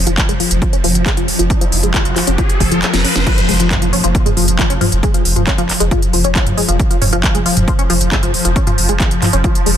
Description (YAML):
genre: driving peak-time techno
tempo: 136 BPM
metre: 4/4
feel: straight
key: F minor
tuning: A4 = 441 Hz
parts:
  - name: saturated sub bass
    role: bass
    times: 0.0-9.8 s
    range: F1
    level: -18 LUFS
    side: equal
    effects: overdrive, sidechain pumping, low-pass filter
  - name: swarming drone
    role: drone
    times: 0.0-9.8 s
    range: F3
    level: -21 LUFS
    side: left 1 dB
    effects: built-in reverb, sidechain pumping
  - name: riser and impact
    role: sound effects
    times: 0.8-5.0 s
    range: none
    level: -22 LUFS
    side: equal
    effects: none
  - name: tight sequenced synth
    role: riff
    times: 0.1-9.7 s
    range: F3 to Db4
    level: -19 LUFS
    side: left 2 dB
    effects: chorus, phaser, sidechain pumping, digital delay
  - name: techno drum kit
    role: drums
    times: 0.1-9.8 s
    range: crash cymbal, handclaps, hi-hat, snare drum, toms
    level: -18 LUFS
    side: equal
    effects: overdrive
  - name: electronic kick drum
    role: drums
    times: 0.2-9.5 s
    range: none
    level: -16 LUFS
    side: equal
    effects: overdrive
room: little or no reverb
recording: dense, heavily limited modern master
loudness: -12 LUFS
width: side -10 dB against mid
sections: 0.0-3.3 A section; 3.3-9.8 B section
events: riser 0.8-3.3; kick drops out 2.8-3.3; drum fill 2.9-3.3; drop 3.3-9.8; impact 3.3-5.0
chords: none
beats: 0.18 0.62 1.06 | 1.50 1.94 2.38 2.83 | 3.27 3.71 4.15 4.59 | 5.03 5.47 5.91 6.35 | 6.79 7.24 7.68 8.12 | 8.56 9.00 9.44